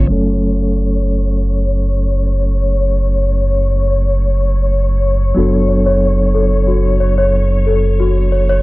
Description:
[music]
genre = trip hop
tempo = 91 BPM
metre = 4/4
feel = swing 53% on 16ths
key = F# minor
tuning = A4 = 439 Hz
[part]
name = bell-like tine electric piano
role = accompaniment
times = 0.0-8.6 s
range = F#3 to A4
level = -20 LUFS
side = equal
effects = tremolo, low-pass filter, tape echo
[part]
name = muted symphonic string section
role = sustained chords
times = 0.0-8.6 s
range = C#5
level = -22 LUFS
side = left 4 dB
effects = vintage 12-bit sampler grit, low-pass filter
[part]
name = round analog bass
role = bass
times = 0.0-8.6 s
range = F#1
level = -14 LUFS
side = equal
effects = none
[part]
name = small celesta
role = arpeggios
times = 5.4-8.6 s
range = F#4 to C#5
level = -17 LUFS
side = left 2 dB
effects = tape echo
[sound]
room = small room ambience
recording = dry, gritty hardware recording, low-pass filter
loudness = -12 LUFS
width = side -20 dB against mid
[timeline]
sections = 0.1-8.6 A section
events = filter sweep on tine electric piano 0.1-8.6; filter sweep on string section 0.1-8.6; filter sweep 0.1-8.6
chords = 0.1 F#m; 5.4 D6/F#

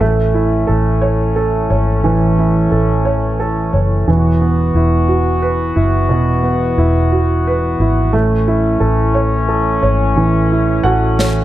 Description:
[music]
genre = six-eight pop ballad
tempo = 59 BPM (dotted quarters)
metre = 6/8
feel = straight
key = unclear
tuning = A4 = 440 Hz
[part]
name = warm grand piano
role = accompaniment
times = 0.0-11.4 s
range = B2 to F#5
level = -16 LUFS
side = right 3 dB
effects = none
[part]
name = mellow brass ensemble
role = sustained chords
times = 0.0-11.4 s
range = E3 to F#4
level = -19 LUFS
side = left 3 dB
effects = none
[part]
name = vintage muted fingered electric bass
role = bass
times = 0.0-11.4 s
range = E1 to A1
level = -16 LUFS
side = left 1 dB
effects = none
[part]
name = snare drum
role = drums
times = 11.2-11.3 s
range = none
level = -19 LUFS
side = equal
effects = none
[sound]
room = light reverb, studio reverb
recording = dark, warm production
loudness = -12 LUFS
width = side -14 dB against mid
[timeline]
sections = 0.0-11.4 A section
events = drum fill 11.2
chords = 0.0 A; 4.1 Esus2; 8.1 A

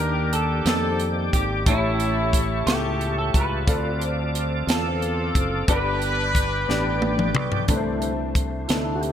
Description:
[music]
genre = slow gospel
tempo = 60 BPM (dotted quarters)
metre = 6/8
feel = straight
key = C major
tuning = A4 = 440 Hz
[part]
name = clean electric guitar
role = melody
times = 0.0-7.3 s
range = E4 to B4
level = -30 LUFS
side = right 2 dB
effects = analog chorus
[part]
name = warm horn section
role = melody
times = 0.0-7.4 s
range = G3 to B4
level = -28 LUFS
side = left 2 dB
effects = digital delay
[part]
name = warm concert grand piano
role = accompaniment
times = 0.0-9.1 s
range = G2 to F5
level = -28 LUFS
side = left 2 dB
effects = ensemble chorus
[part]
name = tonewheel organ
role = sustained chords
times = 0.0-9.1 s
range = D3 to D6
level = -30 LUFS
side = right 2 dB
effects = fast rotary speaker, chorus vibrato
[part]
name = fingered electric bass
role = bass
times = 0.0-9.1 s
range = F#1 to F2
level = -27 LUFS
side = equal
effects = none
[part]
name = crisp fusion drum kit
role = drums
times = 0.3-9.1 s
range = hi-hat, kick drum, snare drum, toms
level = -24 LUFS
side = equal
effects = none
[sound]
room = light reverb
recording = bright 1980s-style digital production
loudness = -20 LUFS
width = side -9 dB against mid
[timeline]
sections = 0.0-7.7 A section; 7.7-9.1 B section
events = drum fill 6.7-7.7; tonewheel organ solo 7.7-9.1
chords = 0.0 Ebmaj7; 1.7 A7; 3.7 Dm7; 5.7 G; 7.7 C69

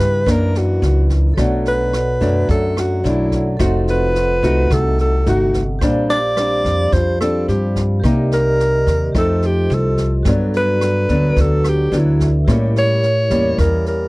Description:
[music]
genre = bossa nova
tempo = 108 BPM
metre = 4/4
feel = straight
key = unclear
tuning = A4 = 441 Hz
[part]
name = breathy alto saxophone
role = melody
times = 0.0-14.1 s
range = E4 to D5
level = -18 LUFS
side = equal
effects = none
[part]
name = nylon-string guitar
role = accompaniment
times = 0.0-14.1 s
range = F#2 to G4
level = -20 LUFS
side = left 1 dB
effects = none
[part]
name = upright bass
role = bass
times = 0.0-14.1 s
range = F1 to A2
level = -18 LUFS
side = equal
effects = none
[part]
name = jazz brush drum kit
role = drums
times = 0.3-13.9 s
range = kick drum, rim click, snare drum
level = -23 LUFS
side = equal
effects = none
[part]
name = vibraphone with medium mallets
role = accompaniment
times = 1.3-14.1 s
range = C4 to F#5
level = -26 LUFS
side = right 2 dB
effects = none
[sound]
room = little or no reverb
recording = dry, close 1970s-style studio recording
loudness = -14 LUFS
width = side -23 dB against mid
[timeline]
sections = 0.0-14.1 A section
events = none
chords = 0.3 F#7b13; 1.4 Bm7; 3.6 F7b9; 5.8 Bb69; 8.0 Cm7; 9.2 F9; 10.3 Gmaj7; 12.5 A7b9

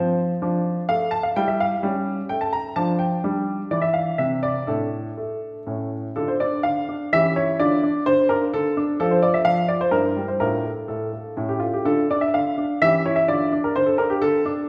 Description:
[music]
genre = classical-period piano sonatina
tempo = 128 BPM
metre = 3/4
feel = rubato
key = D minor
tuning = A4 = 440 Hz
[part]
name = clear baby grand piano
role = solo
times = 0.0-14.7 s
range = G2 to Bb5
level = -22 LUFS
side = equal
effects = none
[sound]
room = wet recital hall reverb, RT60 1.5 s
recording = heard from further back in the room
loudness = -22 LUFS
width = mono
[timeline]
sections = 0.0-6.2 A section; 6.2-14.7 B section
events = none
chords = 0.4 Dm/F; 1.4 Em/G; 1.8 A7/G; 2.8 Dm/F; 3.2 G5; 4.7 Asus4; 5.7 A; 6.2 Dm; 7.1 C#dim/E; 7.6 Dm; 9.0 Dm/F; 9.9 Edim/G; 10.4 Dm/A; 11.4 A; 11.9 Dm; 12.8 C#dim/E; 13.3 Dm

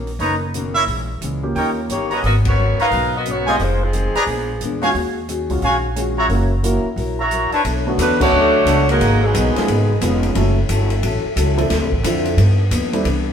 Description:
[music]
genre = jazz, big band swing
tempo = 177 BPM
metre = 4/4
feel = swing 64% on 8ths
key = Eb minor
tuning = A4 = 441 Hz
[part]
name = fingerpicked steel-string acoustic guitar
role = accompaniment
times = 0.0-13.3 s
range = F2 to C#5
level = -25 LUFS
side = left 4 dB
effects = none
[part]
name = upright bass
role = bass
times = 0.0-13.3 s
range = F1 to G2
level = -20 LUFS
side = equal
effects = none
[part]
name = open jazz drum kit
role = drums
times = 0.1-13.2 s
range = crash cymbal, hi-hat, kick drum, ride cymbal, snare drum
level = -26 LUFS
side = left 1 dB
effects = none
[part]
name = bright trumpet section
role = stabs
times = 0.2-7.6 s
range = D4 to Bb5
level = -20 LUFS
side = right 1 dB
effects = none
[part]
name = warm grand piano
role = accompaniment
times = 1.4-13.0 s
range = D3 to A4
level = -23 LUFS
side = right 1 dB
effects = none
[part]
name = dark saxophone section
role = melody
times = 1.9-4.8, 8.0-10.2 s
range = F3 to F5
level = -19 LUFS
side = equal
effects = none
[part]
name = clear trombone section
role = second line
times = 8.0-10.2 s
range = B2 to D4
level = -21 LUFS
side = equal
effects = none
[sound]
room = moderate stone room reverb, RT60 1.2 s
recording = band playing live in one room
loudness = -15 LUFS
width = side -8 dB against mid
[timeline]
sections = 0.0-7.7 A section; 7.7-13.3 B section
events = band accent 2.4, 8.2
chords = 0.0 Bmaj9; 0.9 Bbm7b5; 1.6 Eb7; 2.2 Abm11; 3.6 Fm7; 4.3 Bb7b9; 4.9 Ebm11; 6.3 Gb7; 7.7 Bm9; 9.0 G#m7; 9.7 C#7; 10.4 F#m7; 11.7 Dm7; 12.4 G7b13

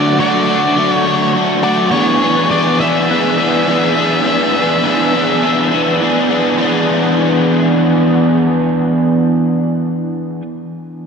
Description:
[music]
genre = rock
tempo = 103 BPM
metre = 4/4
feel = straight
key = E mixolydian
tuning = A4 = 440 Hz
[part]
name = octave-fuzz lead guitar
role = melody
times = 0.0-6.0 s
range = C#5 to E5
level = -18 LUFS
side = left 1 dB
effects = distortion, diffuse ambient delay
[part]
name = overdriven electric guitar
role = riff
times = 0.0-10.4 s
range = D3 to G#4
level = -12 LUFS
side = equal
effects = analog chorus
[sound]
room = wet cathedral reverb, RT60 5.0 s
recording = dreamy mix soaked in reverb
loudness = -11 LUFS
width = side -6 dB against mid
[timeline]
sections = 0.0-6.6 A section; 6.6-8.9 B section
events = none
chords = 0.0 D; 1.9 E7

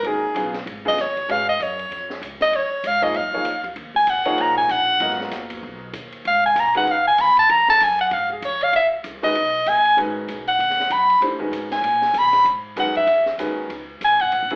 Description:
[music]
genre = modal jazz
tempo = 193 BPM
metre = 4/4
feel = swing 60% on 8ths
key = C# dorian from 8.7 s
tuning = A4 = 443 Hz
[part]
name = bright soprano saxophone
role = melody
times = 0.0-14.5 s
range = G#4 to B5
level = -19 LUFS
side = equal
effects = slapback echo
[part]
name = upright bass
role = bass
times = 0.0-14.6 s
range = D#1 to B2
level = -41 LUFS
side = equal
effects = none
[part]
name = open jazz drum kit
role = drums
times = 0.0-14.6 s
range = hi-hat, kick drum, ride cymbal, snare drum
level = -37 LUFS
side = equal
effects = none
[part]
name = clear grand piano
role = accompaniment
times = 0.1-6.9, 9.2-14.6 s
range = C#3 to E#5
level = -29 LUFS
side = equal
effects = slapback echo
[sound]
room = moderate club reverb, RT60 0.5 s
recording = live gig heard through the venue's PA, club reverb, telephone sound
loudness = -20 LUFS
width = mono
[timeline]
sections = 0.0-8.7 A section; 8.7-14.6 A section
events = soprano saxophone solo 0.0-14.6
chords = 0.0 G#m9; 1.3 C#; 3.8 G#m9; 6.3 C#/G#; 8.7 C#m9; 13.7 D#m (rootless)

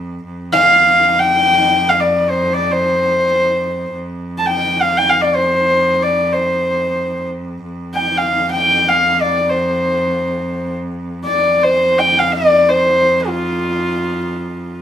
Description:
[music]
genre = mongolian traditional, Mongolian folk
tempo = free time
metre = none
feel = none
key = unclear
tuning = A4 = 440 Hz
[part]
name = bright cello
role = drone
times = 0.0-14.8 s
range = F2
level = -23 LUFS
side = right 1 dB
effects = none
[part]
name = warm horsehead fiddle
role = melody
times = 0.5-14.8 s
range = F4 to A5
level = -13 LUFS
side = left 1 dB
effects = none
[sound]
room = wet studio reverb, RT60 0.8 s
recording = band playing live in one room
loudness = -12 LUFS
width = side -10 dB against mid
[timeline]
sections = 0.2-14.8 A section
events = none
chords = none

